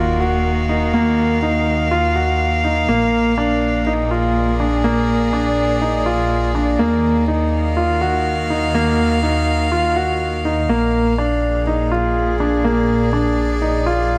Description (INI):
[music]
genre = piano and strings electronica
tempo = 123 BPM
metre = 4/4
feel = straight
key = Eb harmonic minor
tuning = A4 = 439 Hz
[part]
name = warm string quartet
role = sustained chords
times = 0.0-14.2 s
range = Bb2 to F5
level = -23 LUFS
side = equal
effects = none
[part]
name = warm concert grand piano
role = riff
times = 0.0-14.2 s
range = Bb3 to Gb4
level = -21 LUFS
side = equal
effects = tape echo
[part]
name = dark detuned saw bass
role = bass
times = 0.0-14.2 s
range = Bb1 to Eb2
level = -24 LUFS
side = equal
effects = none
[part]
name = sub drop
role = sound effects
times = 0.0-0.9 s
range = none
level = -33 LUFS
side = equal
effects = none
[sound]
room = moderate lush hall reverb, RT60 2.4 s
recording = none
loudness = -18 LUFS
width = mono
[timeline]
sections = 0.0-14.2 A section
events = impact 0.0-0.9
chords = 0.0 Ebmadd9; 2.9 Bb7; 6.8 Ebmadd9; 10.7 Bb7